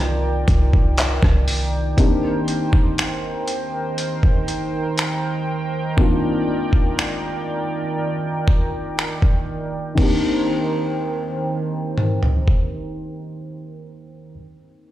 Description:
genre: contemporary R&B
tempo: 60 BPM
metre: 4/4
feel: straight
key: C minor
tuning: A4 = 444 Hz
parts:
  - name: felt-muted upright piano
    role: accompaniment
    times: 0.0-14.9 s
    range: Eb3 to G4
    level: -25 LUFS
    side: left 2 dB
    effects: low-pass filter
  - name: chorused pulse-width pad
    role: sustained chords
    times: 0.0-14.3 s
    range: Eb3 to G5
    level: -25 LUFS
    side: right 2 dB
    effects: sidechain pumping, low-pass filter
  - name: clean 808-style bass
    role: bass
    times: 0.0-1.9 s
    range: C2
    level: -19 LUFS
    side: equal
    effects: none
  - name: dusty soul sampler-style drum kit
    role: drums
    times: 0.5-12.7 s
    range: crash cymbal, finger snaps, handclaps, hi-hat, kick drum, rim click, toms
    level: -18 LUFS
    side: equal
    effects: overdrive
room: light reverb, digital ambience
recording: played on a big sound system in a bare room, stone room reverb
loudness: -18 LUFS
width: side -14 dB against mid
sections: 0.0-2.0 A section; 2.0-10.0 B section; 10.0-14.0 C section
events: none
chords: 0.0 Cm7

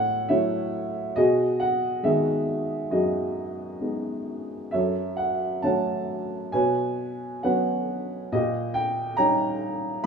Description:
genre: classical, lyrical solo piano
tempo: 68 BPM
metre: 4/4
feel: rubato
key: unclear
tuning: A4 = 439 Hz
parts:
  - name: dark upright piano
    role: solo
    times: 0.0-10.1 s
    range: F#2 to A#5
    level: -23 LUFS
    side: right 1 dB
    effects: none
room: light reverb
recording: studio reverb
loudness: -23 LUFS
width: side -6 dB against mid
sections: 0.0-10.1 A section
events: none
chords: 0.0 F#m7/A; 1.2 B6; 4.7 F#m; 6.5 Bsus2; 8.3 D#7/A#

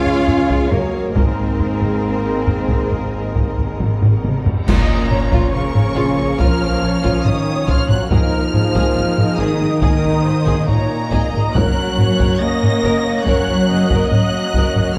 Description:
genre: cinematic, epic orchestral film score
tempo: 70 BPM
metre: 4/4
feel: straight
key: Bb minor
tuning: A4 = 440 Hz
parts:
  - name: warm symphonic violin section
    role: melody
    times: 0.0-15.0 s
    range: Eb5 to Bb6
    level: -30 LUFS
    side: equal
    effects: none
  - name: warm symphonic violin section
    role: second line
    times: 0.0-14.9 s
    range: F4 to F5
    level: -30 LUFS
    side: equal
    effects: none
  - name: warm symphonic viola section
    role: accompaniment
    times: 0.0-15.0 s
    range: Ab4 to Eb5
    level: -28 LUFS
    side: equal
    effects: none
  - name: mellow French horn section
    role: sustained chords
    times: 0.0-15.0 s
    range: F3 to Eb4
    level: -27 LUFS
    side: equal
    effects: none
  - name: mellow trombone section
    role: sustained chords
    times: 0.0-15.0 s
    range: Bb2 to F4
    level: -27 LUFS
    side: equal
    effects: none
  - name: dark symphonic cello section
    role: bass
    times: 0.0-15.0 s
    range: Bb2 to F4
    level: -24 LUFS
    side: equal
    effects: none
  - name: rich symphonic double bass section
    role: bass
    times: 0.0-14.8 s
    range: Gb1 to Db2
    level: -27 LUFS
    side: equal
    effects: none
  - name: taiko ensemble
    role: drums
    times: 0.1-15.0 s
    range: none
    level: -20 LUFS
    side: equal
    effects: none
  - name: cymbal swell, clash cymbals and concert bass drum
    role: percussion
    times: 1.2-6.4 s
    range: none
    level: -26 LUFS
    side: equal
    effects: none
  - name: warm symphonic string section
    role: sustained chords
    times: 4.7-15.0 s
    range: Bb3 to Gb5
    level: -30 LUFS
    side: equal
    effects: none
room: moderate scoring stage reverb, RT60 1.6 s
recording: dark, warm production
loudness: -17 LUFS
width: mono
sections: 0.0-4.7 A section; 4.7-15.0 B section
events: drum fill 3.8-4.7; band accent 4.7-5.5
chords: 0.0 Db; 1.2 Abadd9; 4.7 Bbm; 8.1 Absus2; 11.5 Gb

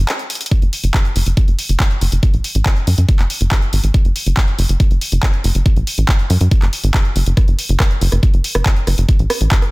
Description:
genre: psychedelic trance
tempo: 140 BPM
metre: 4/4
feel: straight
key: F# minor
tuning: A4 = 440 Hz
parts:
  - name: tight sequencer bass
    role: bass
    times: 0.0-9.5 s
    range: F#1 to F#2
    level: -14 LUFS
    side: equal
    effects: tube saturation
  - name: techno drum kit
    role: drums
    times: 0.1-9.7 s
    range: handclaps, hi-hat, rim click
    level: -21 LUFS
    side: equal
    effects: overdrive, small room ambience
  - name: electronic kick drum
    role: drums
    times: 0.5-9.6 s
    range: none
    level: -14 LUFS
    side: equal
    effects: small room ambience
room: little or no reverb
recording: dense, heavily limited modern master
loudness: -13 LUFS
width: side -24 dB against mid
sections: 0.0-9.7 A section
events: break 0.1-0.5; drum fill 0.3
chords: none

